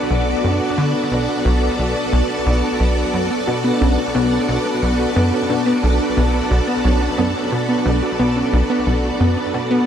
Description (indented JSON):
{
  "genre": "ambient, sequencer-driven space music",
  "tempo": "89 BPM",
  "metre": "4/4",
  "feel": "straight",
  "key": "B minor",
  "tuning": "A4 = 440 Hz",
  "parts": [
    { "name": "string machine, full ensemble", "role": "sustained chords", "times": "0.0-9.9 s", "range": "B3 to D5", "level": "-20 LUFS", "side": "left 1 dB", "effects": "ensemble chorus" },
    { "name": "wind-like tuned noise texture", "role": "texture", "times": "0.0-9.9 s", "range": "D4 to D5", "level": "-26 LUFS", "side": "right 4 dB", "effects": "built-in reverb" },
    { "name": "plucky analog bass", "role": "riff", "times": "0.1-9.8 s", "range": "B1 to D3", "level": "-20 LUFS", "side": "equal", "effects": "lush chorus, ping-pong delay" },
    { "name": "wide unison pluck", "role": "arpeggios", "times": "3.1-9.8 s", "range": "B3 to F#4", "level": "-21 LUFS", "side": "equal", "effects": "auto-pan, ping-pong delay" }
  ],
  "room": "wet shimmer reverb, RT60 7.2 s",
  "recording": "none",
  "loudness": "-15 LUFS",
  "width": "side -9 dB against mid",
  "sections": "0.0-9.9 A section",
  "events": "none",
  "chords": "0.0 Bm7"
}